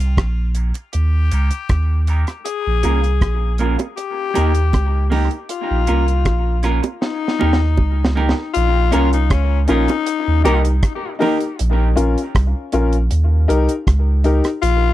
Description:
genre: dub reggae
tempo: 79 BPM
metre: 4/4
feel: straight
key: Bb dorian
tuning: A4 = 440 Hz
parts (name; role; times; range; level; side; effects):
- raspy tenor saxophone; second line; 0.0-14.9 s; Db4 to Ab4; -23 LUFS; left 9 dB; high-pass filter, tape echo
- warm sub bass; bass; 0.0-14.9 s; Bb1 to Eb2; -16 LUFS; equal; none
- deep reggae drum kit; drums; 0.0-14.8 s; hi-hat, kick drum, rim click, snare drum; -20 LUFS; right 1 dB; none
- semi-hollow electric guitar; accompaniment; 0.5-11.4 s; Bb3 to Bb4; -24 LUFS; right 4 dB; high-pass filter, low-pass filter, tape echo
- bongos; percussion; 0.8-11.4 s; none; -26 LUFS; right 5 dB; high-pass filter on perc, tape echo
- warm upright piano; stabs; 8.9-14.5 s; Db4 to Bb4; -20 LUFS; left 3 dB; high-pass filter, low-pass filter, tape echo
room: little or no reverb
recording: dry, close 1970s-style studio recording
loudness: -15 LUFS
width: side -14 dB against mid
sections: 0.0-8.5 A section; 8.5-14.9 B section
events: break 0.0-8.5; filter sweep 0.0-8.5; drum fill 7.0-8.5; part muted 11.6-14.9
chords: 0.0 Bbm; 0.9 Eb; 2.5 Bbm; 4.0 Eb; 5.5 Bbm; 7.0 Eb; 8.5 Bbm; 10.1 Eb; 11.6 Bbm; 13.1 Eb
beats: 0.17 0.94 1.70 | 2.46 3.22 3.98 4.74 | 5.50 6.26 7.02 7.79 | 8.55 9.31 10.07 10.83 | 11.59 12.35 13.11 13.87 | 14.63

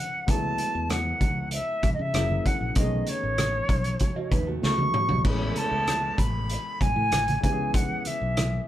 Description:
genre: lush 1970s-style soul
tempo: 96 BPM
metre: 4/4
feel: straight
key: F# minor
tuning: A4 = 439 Hz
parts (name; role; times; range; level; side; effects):
- silver concert flute; melody; 0.0-8.7 s; C#5 to C#6; -28 LUFS; equal; none
- warm grand piano; accompaniment; 0.0-8.7 s; C#3 to G#4; -34 LUFS; left 3 dB; none
- fingered electric bass; bass; 0.3-8.6 s; F#1 to C#3; -30 LUFS; equal; none
- vintage drum kit; drums; 0.3-8.5 s; crash cymbal, hi-hat, kick drum, rim click, snare drum, toms; -27 LUFS; equal; none
- congas; percussion; 0.3-8.5 s; none; -34 LUFS; right 2 dB; none
- electric guitar through a small old amp; riff; 4.2-5.2 s; A3 to D#5; -33 LUFS; right 6 dB; none
room: moderate studio ambience, RT60 0.5 s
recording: band playing live in one room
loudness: -23 LUFS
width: side -12 dB against mid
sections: 0.0-8.7 A section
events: drum fill 4.6-5.3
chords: 0.3 F#m11/C#; 2.1 F#9; 2.8 B13; 5.3 Amaj9; 7.4 C#m7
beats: | 0.28 0.90 1.52 2.14 | 2.76 3.39 4.01 4.63 | 5.25 5.88 6.50 7.12 | 7.75 8.37

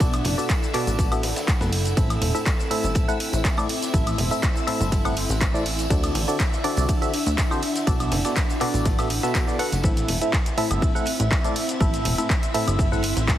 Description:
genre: piano house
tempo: 122 BPM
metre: 4/4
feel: swing 53% on 16ths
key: A dorian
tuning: A4 = 438 Hz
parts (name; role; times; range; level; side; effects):
- string machine, violins; sustained chords; 0.0-13.4 s; E4 to E5; -33 LUFS; equal; ensemble chorus, sidechain pumping
- barking FM electric piano; riff; 0.0-13.0 s; A2 to F#5; -27 LUFS; equal; chorus, phaser, tremolo, sidechain pumping, dub echo
- plucky analog bass; bass; 0.0-13.4 s; E1 to D2; -25 LUFS; equal; sidechain pumping
- crunchy breakbeat drum kit; drums; 0.0-13.4 s; ride cymbal, snare drum; -38 LUFS; equal; sidechain pumping on cymbals, high-pass filter on cymbals, high-pass filter on snare, high-pass filter on room
- electronic kick drum; drums; 0.0-13.4 s; none; -23 LUFS; equal; overdrive
- house drum kit; drums; 0.0-13.4 s; handclaps, hi-hat, shaker, woodblock; -28 LUFS; equal; overdrive
- tambourine; percussion; 0.0-9.8 s; none; -40 LUFS; right 4 dB; none
- deep dark ambient pad; texture; 0.0-13.4 s; C4 to C6; -31 LUFS; equal; chorus, built-in reverb, sidechain pumping
room: light reverb, digital ambience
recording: heavily compressed radio sound, multiband compression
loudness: -20 LUFS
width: side -12 dB against mid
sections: 0.0-9.8 A section; 9.8-13.4 B section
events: drop 9.8-13.4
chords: 0.0 Bm7; 2.0 Am; 5.9 D7; 7.9 Bm7; 9.8 Am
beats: | 0.00 0.49 0.99 1.48 | 1.97 2.46 2.95 3.44 | 3.94 4.43 4.92 5.41 | 5.90 6.40 6.89 7.38 | 7.87 8.36 8.86 9.35 | 9.84 10.33 10.82 11.31 | 11.81 12.30 12.79 13.28

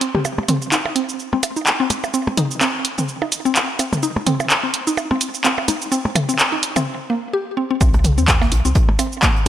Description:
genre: minimal techno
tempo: 127 BPM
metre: 4/4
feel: swing 57% on 16ths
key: C minor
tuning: A4 = 441 Hz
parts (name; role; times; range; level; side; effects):
- mallet-like synth pluck; riff; 0.0-9.3 s; Bb3 to G4; -22 LUFS; equal; chorus, sidechain pumping, tape echo
- punchy analog drum machine; drums; 0.0-9.3 s; handclaps, hi-hat, shaker; -20 LUFS; equal; none
- electronic toms and percussion blips; percussion; 0.1-9.1 s; none; -23 LUFS; equal; tape echo
- woody FM bass; bass; 7.8-8.7 s; Bb1 to Eb2; -18 LUFS; equal; tube saturation, sidechain pumping
- crisp fusion drum kit; drums; 7.8-9.5 s; hi-hat, snare drum; -33 LUFS; right 3 dB; none
- electronic kick drum; drums; 7.8-9.3 s; none; -16 LUFS; equal; none
room: moderate lush hall reverb, RT60 2.0 s, digital ambience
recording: none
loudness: -16 LUFS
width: side -11 dB against mid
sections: 0.0-7.8 A section; 7.8-9.5 B section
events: build-up 0.0-7.8; filter sweep on synth arpeggio sound 0.0-7.8; break 6.9-7.8; drop 7.8-9.5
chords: 0.0 C5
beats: | 0.25 0.72 1.19 1.67 | 2.14 2.61 3.08 3.56 | 4.03 4.50 4.97 5.45 | 5.92 6.39 6.86 7.34 | 7.81 8.28 8.75 9.23

